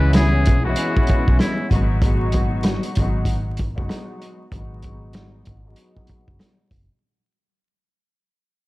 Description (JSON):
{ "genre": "hip hop, boom-bap hip-hop", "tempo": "96 BPM", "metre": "4/4", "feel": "swing 60% on 16ths", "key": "unclear", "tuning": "A4 = 441 Hz", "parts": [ { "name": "trumpet with metal mute", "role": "melody", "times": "0.0-1.7 s", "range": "E4 to B4", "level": "-27 LUFS", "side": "equal", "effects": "high-pass filter, low-pass filter, ping-pong delay" }, { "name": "warm studio string section", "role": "accompaniment", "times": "0.0-6.6 s", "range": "E3 to F#4", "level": "-26 LUFS", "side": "left 2 dB", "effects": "cassette tape, high-pass filter, low-pass filter" }, { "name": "vintage muted picked electric bass", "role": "bass", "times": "0.0-6.9 s", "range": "F#1 to C#2", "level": "-21 LUFS", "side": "equal", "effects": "none" }, { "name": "vintage drum kit", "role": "drums", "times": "0.1-6.9 s", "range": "hi-hat, kick drum, rim click, snare drum", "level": "-20 LUFS", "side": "equal", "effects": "none" } ], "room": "studio reverb", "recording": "dark, warm production, vinyl crackle", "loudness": "-17 LUFS", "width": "side -20 dB against mid", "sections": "0.0-7.0 A section", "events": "fade-out 0.0-7.0; filter sweep 0.0-7.0", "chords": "0.0 C#m7; 1.7 G#m7" }